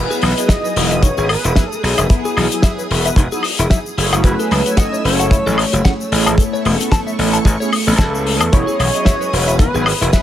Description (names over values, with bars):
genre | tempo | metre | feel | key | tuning
nu-disco, nu disco | 112 BPM | 4/4 | swing 56% on 16ths | E major | A4 = 439 Hz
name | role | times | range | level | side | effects
wide unison lead | melody | 0.0-10.2 s | A4 to D#5 | -21 LUFS | equal | tape echo
mellow synth brass | accompaniment | 0.0-10.2 s | F#3 to G#5 | -22 LUFS | equal | chorus, phaser, sidechain pumping, tape echo
string machine, full ensemble | sustained chords | 0.0-10.2 s | A3 to E6 | -25 LUFS | right 2 dB | ensemble chorus, sidechain pumping
gritty slap bass | bass | 0.0-10.1 s | E1 to E2 | -18 LUFS | equal | overdrive
direct-recorded clean electric guitar | riff | 0.1-10.2 s | E3 to A5 | -24 LUFS | left 3 dB | lush chorus
damped 70s drum kit | drums | 0.1-10.2 s | hi-hat, shaker, snare drum, woodblock | -20 LUFS | left 2 dB | none
kick drum | drums | 0.5-10.2 s | none | -13 LUFS | equal | none
room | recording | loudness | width
studio ambience | none | -13 LUFS | side -11 dB against mid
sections
0.0-10.2 A section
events
none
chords
0.0 Emaj7; 4.0 F#m9; 6.1 Amaj7; 8.5 Emaj7